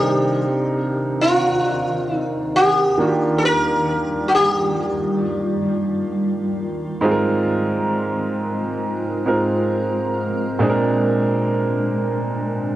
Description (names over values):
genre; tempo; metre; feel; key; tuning
R&B; 67 BPM; 4/4; straight; Eb major; A4 = 443 Hz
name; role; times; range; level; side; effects
sitar; melody; 0.0-6.5 s; F4 to Bb4; -18 LUFS; equal; tape echo
clear concert grand piano; accompaniment; 0.0-12.8 s; Ab2 to Bb4; -21 LUFS; right 1 dB; cassette tape
granular cloud pad; sustained chords; 0.1-12.8 s; Eb3 to D5; -25 LUFS; equal; built-in reverb, cassette tape
direct-recorded clean electric guitar; arpeggios; 0.0-0.5 s; Eb3 to C4; -30 LUFS; left 4 dB; cassette tape, tape echo
room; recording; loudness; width
moderate spring reverb, RT60 2.5 s; home recording on cassette; -17 LUFS; side -14 dB against mid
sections
0.0-12.8 A section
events
none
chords
0.0 Cm9; 3.0 Ebmaj9; 7.0 Ab69; 10.6 Bb9